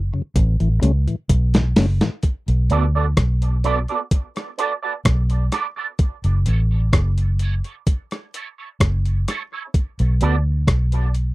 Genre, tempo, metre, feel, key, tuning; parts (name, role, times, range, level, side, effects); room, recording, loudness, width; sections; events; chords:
dub reggae; 64 BPM; 4/4; straight; B minor; A4 = 439 Hz
vintage muted fingered electric bass; bass; 0.0-11.3 s; F#1 to D2; -18 LUFS; equal
mellow tonewheel organ; accompaniment; 0.1-2.1 s; F#2 to C#4; -22 LUFS; left 3 dB
dusty soul sampler-style drum kit; drums; 0.4-11.3 s; hi-hat, kick drum, rim click, snare drum; -18 LUFS; equal; overdrive
electric guitar with an envelope filter; accompaniment; 2.7-10.3 s; B3 to D5; -25 LUFS; right 6 dB; ensemble chorus, high-pass filter, dub echo
little or no reverb; dry, close 1970s-style studio recording; -17 LUFS; side -20 dB against mid
0.0-2.2 A section; 2.2-11.3 B section
break 0.0-2.2; drum fill 0.4-2.2; filter sweep on clean electric guitar 2.2-9.7
0.4 A; 2.2 Bm7; 6.0 F#m7; 9.7 Bm